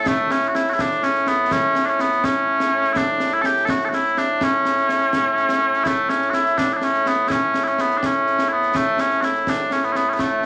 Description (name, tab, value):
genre	scottish traditional, Scottish pipe music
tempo	83 BPM (dotted quarters)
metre	6/8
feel	straight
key	A major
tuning	A4 = 440 Hz
part	mellow small bagpipes	melody	0.0-10.5 s	A2 to A4	-20 LUFS	equal	none
part	concert snare drum and concert bass drum	drums	0.1-10.5 s	none	-28 LUFS	equal	none
room	wet studio reverb, RT60 0.5 s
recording	vinyl crackle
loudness	-20 LUFS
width	mono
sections	0.1-10.5 A section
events	none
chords	none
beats	| 0.07 0.80 | 1.52 2.24 | 2.96 3.69 | 4.41 5.13 | 5.86 6.58 | 7.30 8.03 | 8.75 9.47 | 10.19